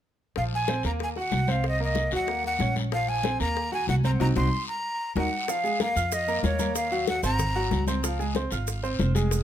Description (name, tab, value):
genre	latin, salsa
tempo	188 BPM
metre	4/4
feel	straight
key	Bb minor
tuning	A4 = 440 Hz
part	breathy bright jazz flute	melody	0.4-7.8 s	Db5 to C6	-28 LUFS	equal	tape echo
part	bright upright piano	accompaniment	0.4-9.4 s	F3 to F6	-31 LUFS	right 1 dB	none
part	upright bass	bass	0.4-9.4 s	F1 to F2	-28 LUFS	right 1 dB	none
part	bongos	percussion	0.4-9.4 s	none	-33 LUFS	left 9 dB	none
part	congas	percussion	0.4-9.4 s	none	-33 LUFS	left 4 dB	none
part	guiro	percussion	0.4-9.4 s	none	-39 LUFS	left 6 dB	none
part	maracas	percussion	5.5-9.4 s	none	-36 LUFS	right 6 dB	none
room	light reverb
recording	close, detailed microphones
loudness	-24 LUFS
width	side -10 dB against mid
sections	0.4-5.5 A section; 5.5-9.4 B section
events	band accent 4.2-5.5; drum fill 5.0-5.5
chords	0.4 Bbsus2; 1.0 Cm7b5; 2.3 Ebm7; 2.9 Bbsus2; 3.6 Ebm; 4.2 Cdim; 4.8 Ebm; 5.5 Bbm7; 6.8 Ebmadd9; 7.4 Ab9; 8.0 Dbmaj7